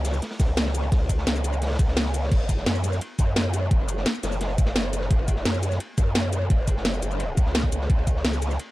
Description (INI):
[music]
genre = dark technical drum and bass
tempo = 172 BPM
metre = 4/4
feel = straight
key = unclear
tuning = A4 = 441 Hz
[part]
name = growl bass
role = bass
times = 0.0-8.6 s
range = F#1 to F#2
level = -25 LUFS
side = equal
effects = chorus, tube saturation, sidechain pumping
[part]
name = crunchy breakbeat drum kit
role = drums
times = 0.0-8.7 s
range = hi-hat, ride cymbal, snare drum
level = -37 LUFS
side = equal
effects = high-pass filter on cymbals, high-pass filter on hats, high-pass filter on snare, high-pass filter on room
[part]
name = drum and bass drum kit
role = drums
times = 0.0-8.7 s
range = crash cymbal, hi-hat, shaker, snare drum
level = -27 LUFS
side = equal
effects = none
[part]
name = electronic kick drum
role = drums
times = 0.4-8.1 s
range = none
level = -22 LUFS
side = equal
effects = none
[sound]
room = little or no reverb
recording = dark, warm production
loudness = -21 LUFS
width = side -18 dB against mid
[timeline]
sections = 0.0-8.7 A section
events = none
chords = none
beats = 0.22 0.57 | 0.92 1.27 1.62 1.97 | 2.32 2.66 3.01 3.36 | 3.71 4.06 4.41 4.76 | 5.11 5.46 5.80 6.15 | 6.50 6.85 7.20 7.55 | 7.90 8.25 8.60